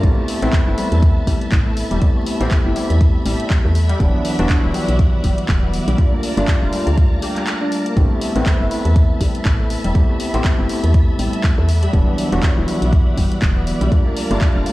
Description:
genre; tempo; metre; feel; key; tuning
deep house; 121 BPM; 4/4; swing 57% on 16ths; A minor; A4 = 435 Hz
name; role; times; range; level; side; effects
soft string machine; sustained chords; 0.0-14.7 s; D5 to B5; -29 LUFS; equal; ensemble chorus, sidechain pumping
warbly dusty pluck; arpeggios; 0.0-14.7 s; G3 to G4; -26 LUFS; left 2 dB; ensemble chorus, sidechain pumping, digital delay
overdriven tine electric piano; stabs; 0.0-14.7 s; E3 to B4; -23 LUFS; equal; sidechain pumping, digital delay
woody FM bass; bass; 0.0-14.6 s; D1 to E2; -18 LUFS; equal; sidechain pumping
electronic kick drum; drums; 0.0-14.5 s; none; -16 LUFS; equal; none
house drum kit; drums; 0.0-14.7 s; handclaps, hi-hat; -28 LUFS; equal; none
room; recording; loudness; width
little or no reverb; played on a big sound system in a bare room, stone room reverb, vinyl crackle; -14 LUFS; side -18 dB against mid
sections
0.0-14.7 A section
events
break 7.5-8.0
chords
0.0 Am7; 3.8 Em7; 6.0 Gm7; 8.0 Am7; 11.7 Em7; 13.9 Gm7

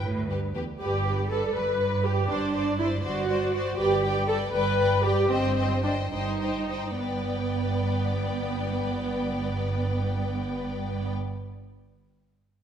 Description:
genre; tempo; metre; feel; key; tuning
quick classical-period movement for string orchestra; 68-82 BPM (dotted quarters); 6/8; straight; G major; A4 = 440 Hz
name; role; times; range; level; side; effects
warm symphonic viola section; accompaniment; 0.0-11.1 s; B3 to B4; -28 LUFS; right 1 dB; none
bright symphonic cello section; bass; 0.0-11.1 s; E2 to A2; -32 LUFS; right 2 dB; none
clear symphonic double bass section; bass; 0.0-11.1 s; G1 to D2; -32 LUFS; right 3 dB; none
clear symphonic violin section; second line; 0.3-11.1 s; G4 to Eb5; -33 LUFS; left 3 dB; none
rich symphonic violin section; melody; 0.8-11.1 s; D5 to G5; -38 LUFS; left 5 dB; none
room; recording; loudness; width
moderate scoring stage reverb, RT60 1.5 s; none; -24 LUFS; side -8 dB against mid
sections
0.8-7.0 A section; 7.0-10.4 B section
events
slowing down 3.0-7.0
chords
0.0 G; 2.3 D7/G; 3.8 G; 5.3 Cm/G; 7.0 G

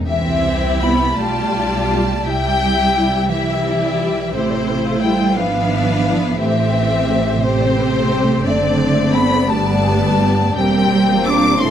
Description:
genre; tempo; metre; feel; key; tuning
classical, slow romantic movement for symphony orchestra; 57 BPM (dotted quarters); 6/8; rubato; C major; A4 = 440 Hz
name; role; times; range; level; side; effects
warm symphonic violin section; second line; 0.0-11.7 s; D4 to E5; -24 LUFS; left 4 dB; none
warm symphonic violin section; melody; 0.1-11.7 s; C5 to D6; -23 LUFS; left 5 dB; none
mellow wooden flute; second line; 0.1-11.7 s; B4 to E6; -22 LUFS; left 2 dB; none
warm symphonic viola section; accompaniment; 0.1-11.7 s; G3 to F4; -21 LUFS; right 2 dB; none
dark symphonic cello section; bass; 0.1-11.7 s; C3 to D4; -21 LUFS; right 3 dB; none
warm symphonic double bass section; bass; 0.1-11.7 s; E1 to C2; -22 LUFS; right 2 dB; none
mellow French horn section; sustained chords; 0.8-11.7 s; E3 to F4; -24 LUFS; left 4 dB; none
room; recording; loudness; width
moderate concert hall reverb, RT60 2.4 s; close, detailed microphones; -14 LUFS; side -9 dB against mid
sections
0.1-11.7 A section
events
none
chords
0.1 C; 1.2 G7/B; 2.3 C; 4.3 Am7; 5.4 E7/G#; 6.4 Am7; 8.5 D7/F#; 9.5 G; 10.6 C7/E

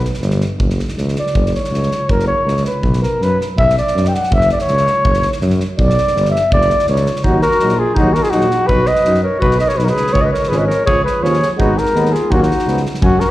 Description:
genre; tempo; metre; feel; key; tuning
balkan folk, Balkan brass band; 164 BPM; 2/4; straight; F# phrygian dominant, Eb minor from 7.2 s; A4 = 441 Hz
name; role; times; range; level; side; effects
dark flugelhorn; melody; 0.0-13.3 s; F4 to G5; -16 LUFS; equal; slapback echo
mellow tuba; bass; 0.0-13.2 s; F#1 to F#2; -18 LUFS; equal; none
natural country drum kit; percussion; 0.0-13.2 s; kick drum, snare drum; -20 LUFS; equal; none
warm clarinet; second line; 7.2-13.3 s; Db4 to B4; -21 LUFS; left 2 dB; slapback echo
clear trombone; accompaniment; 7.3-12.8 s; Bb3 to D#4; -24 LUFS; left 5 dB; slapback echo
dark euphonium; accompaniment; 7.3-12.8 s; F3 to Ab3; -23 LUFS; right 4 dB; slapback echo
room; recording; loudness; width
little or no reverb; live gig heard through the venue's PA, recital hall reverb; -12 LUFS; side -15 dB against mid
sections
0.0-7.2 A section; 7.2-13.0 B section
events
speeding up 0.0-13.3; flugelhorn solo 0.0-7.2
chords
0.0 N.C.; 0.6 F#5; 2.8 B5; 4.3 F#5; 5.8 Bm; 6.5 F#5; 7.2 Ebm; 8.7 B; 10.2 Db; 11.6 Abm; 12.3 Ebm; 12.7 Db7

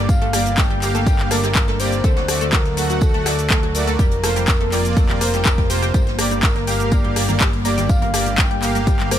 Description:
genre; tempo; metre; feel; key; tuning
progressive house; 123 BPM; 4/4; straight; G minor; A4 = 441 Hz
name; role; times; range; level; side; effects
soft octave-layered synth lead; melody; 0.0-9.2 s; A4 to G5; -25 LUFS; left 2 dB; chorus, sidechain pumping, ping-pong delay
airy breathy pad; sustained chords; 0.0-9.2 s; C3 to Bb3; -29 LUFS; left 1 dB; chorus, sidechain pumping
analog pluck; arpeggios; 0.0-9.2 s; F#3 to G5; -27 LUFS; equal; wide subtle chorus, sidechain pumping, ping-pong delay
fat analog bass; bass; 0.0-9.2 s; F1 to D2; -23 LUFS; equal; sidechain pumping
electronic kick drum; drums; 0.1-9.0 s; none; -17 LUFS; equal; overdrive
house drum kit; drums; 0.1-9.2 s; cabasa, handclaps, hi-hat, rim click; -23 LUFS; left 1 dB; overdrive, sidechain pumping on hats, sidechain pumping on perc
open jazz drum kit; drums; 0.1-9.2 s; hi-hat, snare drum, tambourine; -34 LUFS; left 1 dB; none
soft supersaw; stabs; 0.3-9.2 s; A3 to F#5; -25 LUFS; right 3 dB; sidechain pumping, ping-pong delay
congas; percussion; 6.3-9.1 s; none; -31 LUFS; right 3 dB; none
room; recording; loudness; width
small room ambience; none; -15 LUFS; side -10 dB against mid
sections
0.0-9.2 A section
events
none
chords
0.0 Gm; 2.0 D; 4.0 Fsus4; 5.9 Gm

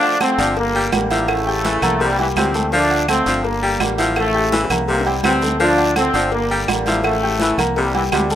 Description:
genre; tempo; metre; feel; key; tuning
latin, salsa; 167 BPM; 4/4; straight; D minor; A4 = 440 Hz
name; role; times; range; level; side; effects
bright trombone section; melody; 0.0-8.4 s; Bb2 to D4; -19 LUFS; equal; none
bright baritone saxophone; second line; 0.0-8.3 s; C3 to G3; -23 LUFS; left 1 dB; none
warm upright piano; accompaniment; 0.0-8.4 s; F3 to G6; -23 LUFS; left 2 dB; none
agogo bells and timbales; percussion; 0.0-8.3 s; none; -24 LUFS; right 9 dB; none
congas; percussion; 0.0-8.4 s; none; -29 LUFS; left 1 dB; none
claves; percussion; 0.2-8.3 s; none; -26 LUFS; left 1 dB; none
cowbell and bongos; percussion; 0.2-8.4 s; none; -30 LUFS; left 8 dB; none
guiro; percussion; 0.2-8.4 s; none; -30 LUFS; left 2 dB; none
fingered electric bass; bass; 0.4-8.4 s; G1 to D2; -26 LUFS; equal; none
room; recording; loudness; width
light reverb, small room ambience; rough home demo mix; -15 LUFS; side -10 dB against mid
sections
0.0-8.4 A section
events
drum fill 4.5-5.6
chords
0.0 Dm; 0.6 Gm; 1.3 A7; 2.0 C7; 2.7 Dm; 3.4 Gm; 4.2 A7; 4.9 C7; 5.6 Dm; 6.3 Gm; 7.0 A7; 7.8 C7

